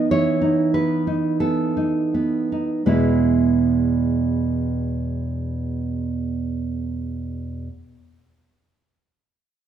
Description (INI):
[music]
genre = romantic piece for solo classical guitar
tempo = 39-50 BPM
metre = 4/4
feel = rubato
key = E major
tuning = A4 = 438 Hz
[part]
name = nylon-string guitar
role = solo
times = 0.0-7.7 s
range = E2 to C#5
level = -19 LUFS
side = right 2 dB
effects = none
[sound]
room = moderate recital hall reverb, RT60 1.4 s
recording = minimal, uncompressed stereo recording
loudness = -19 LUFS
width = side -9 dB against mid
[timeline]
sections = 0.0-2.9 A section; 2.9-8.2 B section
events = slowing down 0.0-2.9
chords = 0.0 B7/E; 2.9 E